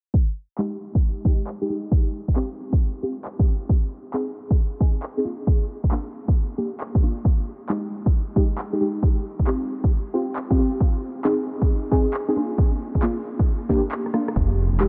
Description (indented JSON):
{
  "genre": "UK garage, two-step garage",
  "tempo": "135 BPM",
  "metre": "4/4",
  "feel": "swing 65% on 16ths",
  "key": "unclear",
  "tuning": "A4 = 439 Hz",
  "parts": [
    { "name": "electronic kick drum", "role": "drums", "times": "0.1-14.5 s", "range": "none", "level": "-22 LUFS", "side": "equal", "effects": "overdrive" },
    { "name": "deep mellow chord stab", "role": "stabs", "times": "0.6-14.9 s", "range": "Ab3 to Ab4", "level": "-28 LUFS", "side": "equal", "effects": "ensemble chorus, tape echo" },
    { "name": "electronic handclaps and rim click", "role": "drums", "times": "0.6-14.9 s", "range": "none", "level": "-39 LUFS", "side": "equal", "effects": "overdrive, low-pass filter on snare" },
    { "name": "dark detuned saw bass", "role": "bass", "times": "14.4-14.9 s", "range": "F1", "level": "-22 LUFS", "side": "equal", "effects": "sidechain pumping" }
  ],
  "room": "moderate huge ambient reverb, RT60 8.2 s",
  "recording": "dreamy mix soaked in reverb, low-pass filter",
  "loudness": "-23 LUFS",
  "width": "mono",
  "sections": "0.1-14.9 A section",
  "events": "filter sweep on drum 0.1-14.9; filter sweep on synth stab 0.1-14.9; filter sweep 0.1-14.9; break 13.9-14.4; drum fill 14.0-14.4",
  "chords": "0.1 Ebadd11/Ab; 1.9 Csus4; 3.7 Cm; 5.2 Gm7; 7.2 Ebadd11/Ab; 9.0 Csus4; 10.8 Cm; 12.4 Gm7; 14.4 Fm9"
}